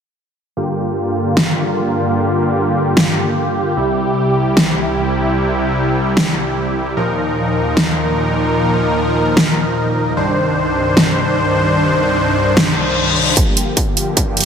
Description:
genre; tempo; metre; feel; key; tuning
heavy wobble dubstep; 150 BPM; 4/4; swing 54% on 16ths, half-time; G minor; A4 = 440 Hz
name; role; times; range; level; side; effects
supersaw chords; sustained chords; 0.6-14.4 s; C2 to C5; -15 LUFS; equal; sidechain pumping, low-pass filter
dubstep drum kit; drums; 1.4-14.4 s; hi-hat, snare drum; -16 LUFS; equal; overdrive, high-pass filter on snare, high-pass filter on hats, high-pass filter on room
reverse cymbal and riser; sound effects; 12.7-14.4 s; none; -19 LUFS; left 5 dB; none
electronic kick drum; drums; 13.4-14.3 s; none; -16 LUFS; equal; distortion
room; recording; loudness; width
wet lush hall reverb, RT60 1.8 s; dense, heavily limited modern master; -13 LUFS; side -7 dB against mid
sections
0.6-13.4 A section; 13.4-14.4 B section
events
filter sweep on supersaw synth 0.6-13.4, 13.4-14.4; reverse cymbal 12.7-13.4; build-up 13.4-14.4; riser 13.4-14.4; filter sweep 13.4-14.4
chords
0.6 Gm7; 3.8 C; 7.0 Ebsus2; 10.2 Cmadd9; 13.4 Gm7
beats
| 0.57 0.97 1.37 1.77 | 2.17 2.57 2.97 3.37 | 3.77 4.17 4.57 4.97 | 5.37 5.77 6.17 6.57 | 6.97 7.37 7.77 8.17 | 8.57 8.97 9.37 9.77 | 10.17 10.57 10.97 11.37 | 11.77 12.17 12.57 12.97 | 13.37 13.77 14.17

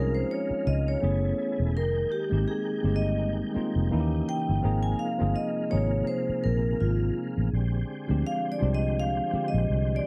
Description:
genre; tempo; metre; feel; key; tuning
R&B; 83 BPM; 4/4; swing 56% on 16ths; unclear; A4 = 440 Hz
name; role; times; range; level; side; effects
vibraphone with medium hard mallets; melody; 0.0-10.1 s; F4 to Ab5; -33 LUFS; equal; none
tine electric piano; accompaniment; 0.0-10.1 s; C3 to Ab4; -33 LUFS; equal; none
tonewheel organ; sustained chords; 0.0-10.1 s; C3 to G5; -41 LUFS; equal; chorus vibrato, fast rotary speaker
vintage muted fingered electric bass; bass; 0.0-10.0 s; Fb1 to Eb2; -29 LUFS; equal; none
room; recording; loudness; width
little or no reverb; dry, close 1970s-style studio recording; -27 LUFS; mono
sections
0.0-10.1 A section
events
vibraphone solo 0.0-10.1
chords
0.0 Dbmaj7; 1.0 Gbm11; 1.7 Fm11; 3.9 Eb7b9; 4.6 Ab69; 7.5 Bb13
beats
0.30 1.02 | 1.75 2.47 3.19 3.92 | 4.64 5.36 6.08 6.81 | 7.53 8.25 8.97 9.70

